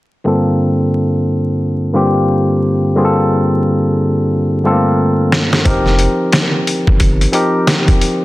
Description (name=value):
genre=hip hop, boom-bap hip-hop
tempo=89 BPM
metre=4/4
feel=swing 61% on 16ths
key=G minor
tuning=A4 = 441 Hz
part: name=barky tine electric piano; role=accompaniment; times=0.2-8.2 s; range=G2 to Bb4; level=-13 LUFS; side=equal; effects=high-pass filter, low-pass filter
part: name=trip hop sampler-style drum kit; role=drums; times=5.3-8.2 s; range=hi-hat, kick drum, snare drum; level=-13 LUFS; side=equal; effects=none
part: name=sub bass with octave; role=bass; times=5.7-7.3 s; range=F1 to G1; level=-15 LUFS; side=equal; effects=none
room=light reverb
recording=dense, heavily limited modern master, vinyl crackle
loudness=-11 LUFS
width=side -18 dB against mid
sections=0.3-8.2 A section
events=filter sweep on tine electric piano 0.3-8.2; drum fill 4.3-5.7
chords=0.3 Gm11; 5.7 F9sus4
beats=| 0.26 0.94 1.61 2.29 | 2.96 3.63 4.31 4.98 | 5.66 6.33 7.00 7.68